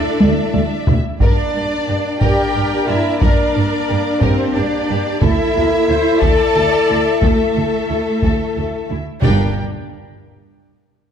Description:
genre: cinematic, epic orchestral film score.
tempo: 60 BPM (dotted quarters).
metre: 6/8.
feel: straight.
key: G dorian.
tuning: A4 = 445 Hz.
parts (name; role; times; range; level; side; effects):
rich symphonic violin section; melody; 0.0-9.6 s; A4 to A5; -26 LUFS; left 2 dB; none.
rich symphonic violin section; second line; 0.0-9.6 s; E4 to E5; -25 LUFS; left 1 dB; none.
bright symphonic viola section; accompaniment; 0.0-9.6 s; Bb3 to D5; -25 LUFS; equal; none.
mellow French horn section; sustained chords; 0.0-9.5 s; A3 to A4; -21 LUFS; left 6 dB; none.
rich symphonic cello section; bass; 0.0-9.6 s; G3 to A4; -21 LUFS; right 3 dB; none.
rich symphonic double bass section; bass; 0.2-9.6 s; G1 to G2; -21 LUFS; right 3 dB; none.
taiko ensemble; drums; 0.2-9.4 s; none; -17 LUFS; equal; none.
room: moderate scoring stage reverb, RT60 1.8 s.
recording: dark, warm production.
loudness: -14 LUFS.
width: side -8 dB against mid.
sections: 0.0-9.2 A section; 9.2-11.1 B section.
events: drum fill 0.2-1.2.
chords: 0.0 Dsus2; 1.2 Gm; 5.2 Dsus2; 9.2 Gm.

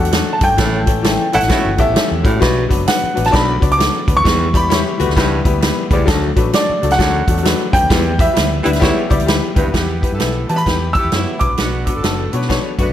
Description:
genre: uptempo 1960s-style soul.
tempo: 131 BPM.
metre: 4/4.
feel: swing 63% on 8ths.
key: E dorian.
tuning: A4 = 440 Hz.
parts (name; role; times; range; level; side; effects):
warm grand piano; melody; 0.0-12.0 s; D5 to E6; -19 LUFS; equal; tape echo.
bright upright piano; accompaniment; 0.0-12.9 s; E3 to D5; -20 LUFS; left 6 dB; none.
vintage muted fingered electric bass; bass; 0.0-12.9 s; F#1 to E3; -20 LUFS; equal; none.
swinging big-band drum kit; drums; 0.0-12.9 s; hi-hat, kick drum, snare drum; -17 LUFS; right 1 dB; none.
warm baritone saxophone; riff; 0.6-9.7 s; D2 to B2; -24 LUFS; right 4 dB; none.
clear horn section; second line; 1.3-1.7, 8.6-12.9 s; F#3 to B4; -24 LUFS; right 3 dB; none.
archtop guitar, miked and amplified; riff; 1.8-5.9, 8.7-9.7, 12.5-12.9 s; G3 to B4; -24 LUFS; left 9 dB; none.
room: light reverb.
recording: none.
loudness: -13 LUFS.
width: side -11 dB against mid.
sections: 0.0-9.7 A section; 9.7-12.9 B section.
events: band accent 0.6-2.4, 7.9-9.7.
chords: 0.0 D; 0.6 A; 2.4 Bm; 4.2 Em; 6.1 D; 7.9 Em; 11.3 Bm.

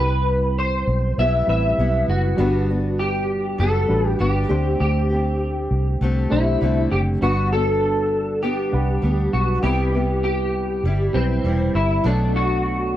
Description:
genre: indie pop, bedroom pop.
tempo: 99 BPM.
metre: 4/4.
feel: swing 55% on 16ths.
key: G major.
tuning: A4 = 439 Hz.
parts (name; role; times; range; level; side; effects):
electric guitar through a small old amp; melody; 0.0-13.0 s; C4 to E5; -23 LUFS; left 1 dB; ensemble chorus, slapback echo.
fingerpicked steel-string acoustic guitar; accompaniment; 0.0-13.0 s; B2 to G4; -27 LUFS; left 3 dB; analog chorus, vibrato effect.
reed electric piano; accompaniment; 0.0-13.0 s; F#3 to F#5; -26 LUFS; right 3 dB; overdrive.
vintage muted fingered electric bass; bass; 0.0-13.0 s; E1 to D2; -21 LUFS; equal; none.
room: light reverb.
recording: dry, close 1970s-style studio recording.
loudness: -18 LUFS.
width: side -12 dB against mid.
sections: 0.0-7.2 A section; 7.2-13.0 B section.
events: none.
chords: 0.0 Cmaj7; 2.4 Gmaj7; 4.5 D7sus4; 7.2 Gmaj7; 9.6 Cmaj7; 12.1 Bm7.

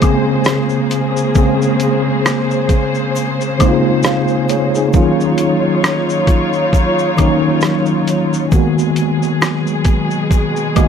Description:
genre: lo-fi hip hop.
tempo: 67 BPM.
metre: 4/4.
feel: swing 57% on 16ths.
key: Bb minor.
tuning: A4 = 441 Hz.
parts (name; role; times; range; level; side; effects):
mellow tine electric piano; accompaniment; 0.0-10.9 s; Db3 to F5; -15 LUFS; equal; medium stereo tremolo, cassette tape, low-pass filter.
dark studio string section; sustained chords; 0.0-10.9 s; Cb3 to Db5; -19 LUFS; left 2 dB; low-pass filter.
boom bap sampler-style drum kit; drums; 0.0-10.9 s; hi-hat, kick drum, rim click, shaker; -15 LUFS; equal; none.
tube shaker and woodblock; percussion; 0.0-10.9 s; none; -26 LUFS; left 5 dB; none.
room: light reverb.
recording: dry, gritty hardware recording, transformer saturation.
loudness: -12 LUFS.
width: side -7 dB against mid.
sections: 0.0-10.9 A section.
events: tine electric piano fill 10.3-10.9.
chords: 0.0 Bbm9; 4.9 Ebm9; 8.5 Abm9.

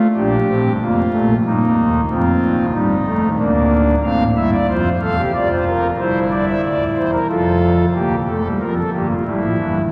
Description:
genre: classical, baroque-style 4-part fugue for pipe organ.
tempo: 92 BPM.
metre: 3/4.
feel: straight.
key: Bb major.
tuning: A4 = 439 Hz.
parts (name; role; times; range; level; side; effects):
pipe organ, foundations; solo; 0.0-9.8 s; D1 to F5; -17 LUFS; equal; none.
room: wet cathedral reverb, RT60 5.2 s.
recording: vinyl crackle.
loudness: -17 LUFS.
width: mono.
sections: 0.0-7.9 A section; 7.9-9.9 B section.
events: none.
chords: 0.2 Bb; 1.5 Eb; 2.1 F7; 3.4 Bb/D; 4.0 F; 5.3 Bb/F; 6.0 C7/G; 7.3 F; 7.9 Bb/D; 9.3 A5.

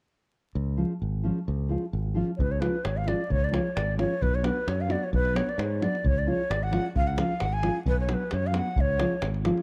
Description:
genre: balkan folk, Balkan wedding band.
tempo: 132 BPM.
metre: 2/4.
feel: straight.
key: unclear.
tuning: A4 = 440 Hz.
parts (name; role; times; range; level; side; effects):
modern bright fingered electric bass; bass; 0.6-9.5 s; G#1 to G#2; -30 LUFS; equal; none.
nylon-string guitar; accompaniment; 0.8-9.6 s; E#3 to F#4; -32 LUFS; equal; none.
breathy bright ney; melody; 2.4-9.2 s; B4 to G#5; -32 LUFS; equal; none.
davul; percussion; 2.4-9.6 s; none; -33 LUFS; equal; none.
room: light reverb, small room ambience.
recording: dark, warm production, vinyl crackle.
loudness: -27 LUFS.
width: mono.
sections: 0.6-2.4 A section; 2.4-9.6 B section.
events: none.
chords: 0.6 C#; 4.2 Bm; 6.0 C#; 7.9 Bm; 8.8 C#.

